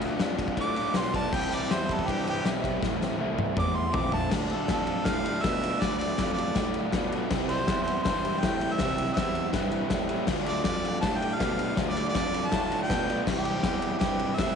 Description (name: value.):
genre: garage rock duo or trio.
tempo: 161 BPM.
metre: 4/4.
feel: straight.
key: unclear.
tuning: A4 = 440 Hz.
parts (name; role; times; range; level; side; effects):
crunchy overdriven guitar; riff; 0.0-14.6 s; A2 to F4; -29 LUFS; right 1 dB; none.
fuzz picked electric bass; bass; 0.0-14.6 s; A1 to B2; -34 LUFS; right 1 dB; overdrive.
oversized low-tuned drum kit; drums; 0.0-14.5 s; crash cymbal, kick drum, ride cymbal, snare drum, toms; -30 LUFS; left 3 dB; none.
bright harmonica; melody; 0.6-14.6 s; G4 to D6; -31 LUFS; right 1 dB; overdrive.
room: moderate echo chamber reverb, RT60 1.8 s, studio reverb.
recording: 1960s-style stereo, nothing above 10.4 kHz.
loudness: -25 LUFS.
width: side -6 dB against mid.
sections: 0.0-4.3 A section; 4.3-14.6 B section.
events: harmonica solo 0.0-4.3; drum fill 2.8-4.3.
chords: 0.0 Dm; 1.3 C; 2.8 Am; 4.3 Dm; 7.3 C; 10.3 Dm; 13.3 C.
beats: 0.19 0.57 0.94 | 1.32 1.70 2.07 2.45 | 2.82 3.20 3.57 3.95 | 4.32 4.70 5.07 5.44 | 5.82 6.19 6.56 6.94 | 7.31 7.68 8.06 8.43 | 8.80 9.18 9.55 9.92 | 10.29 10.67 11.04 11.41 | 11.78 12.16 12.53 12.90 | 13.27 13.64 14.01 14.39.